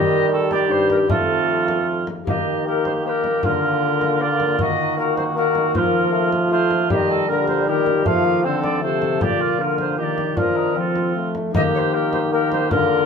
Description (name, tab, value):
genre	classical, renaissance-style consort dance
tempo	155 BPM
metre	3/4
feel	straight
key	unclear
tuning	A4 = 439 Hz
part	alto recorder	melody	0.0-13.1 s	A4 to F5	-23 LUFS	left 5 dB	none
part	warm cor anglais	second line	0.0-13.1 s	Eb4 to Bb4	-25 LUFS	right 4 dB	none
part	concert harp	accompaniment	0.0-13.1 s	F2 to Eb5	-25 LUFS	left 2 dB	none
part	warm bassoon	accompaniment	0.0-13.1 s	G3 to D4	-24 LUFS	left 1 dB	none
part	bright trombone	bass	0.0-13.1 s	F2 to A3	-24 LUFS	right 2 dB	none
part	frame drum	percussion	0.5-12.9 s	none	-27 LUFS	left 1 dB	none
room	wet stone room reverb, RT60 1.0 s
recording	minimal, uncompressed stereo recording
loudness	-17 LUFS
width	side -6 dB against mid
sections	0.0-2.3 A section; 2.3-11.5 B section; 11.5-13.1 B section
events	none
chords	0.0 Eb; 1.1 F; 2.3 Eb; 3.4 Bb/D; 4.6 Ebm; 5.7 Fsus4; 6.1 F; 6.9 Eb; 8.1 F; 9.2 Bb; 10.4 Fsus4; 10.8 F; 11.5 Eb